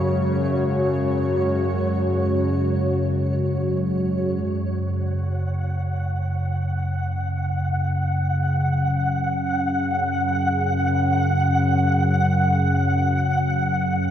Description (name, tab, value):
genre	dark ambient drone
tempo	free time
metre	none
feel	none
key	unclear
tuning	A4 = 440 Hz
part	dark analog pad	sustained chords	0.0-4.4 s	G#3 to C#5	-26 LUFS	right 1 dB	chorus
part	analog drone	drone	0.0-14.1 s	F#2 to C#3	-21 LUFS	equal	chorus
part	flickering grainy texture	texture	0.0-14.1 s	C#5 to F#5	-26 LUFS	equal	built-in reverb
room	wet cathedral reverb, RT60 5.1 s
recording	none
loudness	-20 LUFS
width	side -10 dB against mid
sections	0.0-4.4 A section; 4.4-14.1 B section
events	fade-out on synth texture 0.0-4.4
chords	0.0 F#sus2; 4.4 F#5